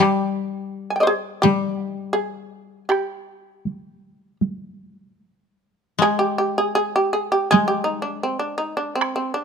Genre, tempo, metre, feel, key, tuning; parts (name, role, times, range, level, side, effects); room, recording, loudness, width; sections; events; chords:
japanese traditional, Japanese chamber music; 71-84 BPM; 4/4; rubato; G miyako bushi; A4 = 440 Hz
shamisen; melody; 0.0-9.4 s; C4 to Ab5; -20 LUFS; right 1 dB
koto; accompaniment; 0.0-9.4 s; G3 to Ab3; -24 LUFS; left 9 dB
taiko ensemble; percussion; 0.0-9.2 s; -23 LUFS; right 3 dB
light reverb; close, detailed microphones; -20 LUFS; side -6 dB against mid
0.0-6.0 A section; 6.0-9.4 B section